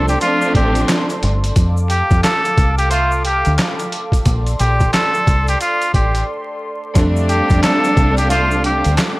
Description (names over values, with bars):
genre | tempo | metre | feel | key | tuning
hip hop, boom-bap hip-hop | 89 BPM | 4/4 | swing 63% on 16ths | F major | A4 = 441 Hz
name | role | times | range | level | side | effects
trumpet with straight mute | melody | 0.0-8.9 s | F4 to A4 | -18 LUFS | equal | high-pass filter, low-pass filter
warm studio string section | accompaniment | 0.0-1.3, 6.9-9.2 s | F3 to D4 | -19 LUFS | equal | cassette tape, high-pass filter, low-pass filter
dark analog pad | sustained chords | 0.0-9.2 s | A4 to D6 | -26 LUFS | equal | chorus, high-pass filter, low-pass filter
deep dub fingered electric bass | bass | 0.0-9.0 s | G1 to F2 | -17 LUFS | equal | tube saturation
boom bap sampler-style drum kit | drums | 0.1-9.2 s | handclaps, hi-hat, kick drum, snare drum | -18 LUFS | equal | none
tube shaker | percussion | 0.1-9.2 s | none | -37 LUFS | left 3 dB | none
dark trumpet section | stabs | 2.9-3.1, 8.3-8.5 s | A3 to C5 | -26 LUFS | right 1 dB | none
room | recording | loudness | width
studio ambience | dry, gritty hardware recording, vinyl crackle | -13 LUFS | side -20 dB against mid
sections
0.0-9.2 A section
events
break 6.3-7.0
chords
0.0 Bbmaj9 (rootless); 1.6 F6; 4.3 Bbmaj9; 7.0 F6